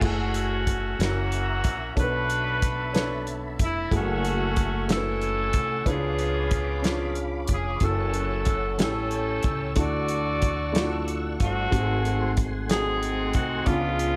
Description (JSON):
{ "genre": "slow gospel", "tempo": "62 BPM (dotted quarters)", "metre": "6/8", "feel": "straight", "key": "F# minor", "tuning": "A4 = 440 Hz", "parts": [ { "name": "bright saxophone section", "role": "melody", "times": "0.0-14.2 s", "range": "G#3 to D5", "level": "-30 LUFS", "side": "equal", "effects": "none" }, { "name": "dark grand piano", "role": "accompaniment", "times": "0.0-14.2 s", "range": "G#2 to C#5", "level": "-33 LUFS", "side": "equal", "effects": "none" }, { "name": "tonewheel organ", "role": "sustained chords", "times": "0.0-14.2 s", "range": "A3 to E6", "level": "-38 LUFS", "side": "equal", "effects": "slow rotary speaker, chorus vibrato" }, { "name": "upright bass", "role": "bass", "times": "0.0-14.2 s", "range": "E#1 to D2", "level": "-32 LUFS", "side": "equal", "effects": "none" }, { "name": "warm soul drum kit", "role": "drums", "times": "0.0-14.1 s", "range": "crash cymbal, hi-hat, kick drum, snare drum", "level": "-29 LUFS", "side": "equal", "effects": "none" } ], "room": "light reverb, studio reverb", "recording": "none", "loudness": "-26 LUFS", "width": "mono", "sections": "0.0-14.2 A section", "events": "none", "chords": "0.0 F#m9; 1.0 F#7; 2.0 Bm9; 3.9 F#m9; 5.9 C#7b9; 7.8 F#m7; 8.8 A7; 9.8 Dmaj9; 11.7 G#7b9" }